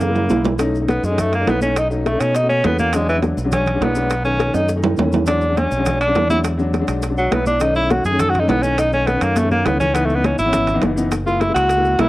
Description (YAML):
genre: Afro-Cuban jazz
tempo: 205 BPM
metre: 4/4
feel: straight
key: B mixolydian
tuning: A4 = 440 Hz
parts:
  - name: clear tenor saxophone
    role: melody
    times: 0.0-12.1 s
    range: E3 to A4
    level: -19 LUFS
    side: equal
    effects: cassette tape
  - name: breathy trombone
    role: second line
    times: 0.0-0.5 s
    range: C#3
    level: -30 LUFS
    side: right 2 dB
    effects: none
  - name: modern bright fingered electric bass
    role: bass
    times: 0.0-12.1 s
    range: F#1 to B2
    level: -22 LUFS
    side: equal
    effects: none
  - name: congas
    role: percussion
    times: 0.0-12.1 s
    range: none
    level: -25 LUFS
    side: equal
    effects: none
  - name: maracas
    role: percussion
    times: 0.0-12.1 s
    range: none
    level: -39 LUFS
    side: left 4 dB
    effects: none
  - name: timbales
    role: percussion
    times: 0.0-12.1 s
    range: none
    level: -24 LUFS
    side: right 5 dB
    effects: none
  - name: warm upright piano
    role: accompaniment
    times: 0.1-12.1 s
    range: D#3 to F#4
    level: -22 LUFS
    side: left 2 dB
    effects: none
  - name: bongos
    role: percussion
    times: 0.4-12.1 s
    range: none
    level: -27 LUFS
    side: left 5 dB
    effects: none
room: light reverb, small room reverb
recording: home recording on cassette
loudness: -15 LUFS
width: side -17 dB against mid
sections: 0.6-12.1 A section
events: drum fill 0.0-0.6, 4.5-5.3, 9.4-9.9; tenor saxophone solo 0.6-12.1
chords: 0.0 F#7; 0.6 B7; 2.9 E7; 4.1 B7; 5.3 E7; 7.6 B7; 9.9 C#m7; 11.1 F#7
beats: 0.01 0.30 | 0.59 0.89 1.18 1.47 | 1.76 2.06 2.35 2.64 | 2.94 3.23 3.52 3.81 | 4.11 4.40 4.69 4.98 | 5.28 5.57 5.86 6.15 | 6.44 6.74 7.03 7.32 | 7.61 7.90 8.20 8.49 | 8.78 9.07 9.36 9.65 | 9.95 10.24 10.53 10.82 | 11.11 11.40 11.70 11.99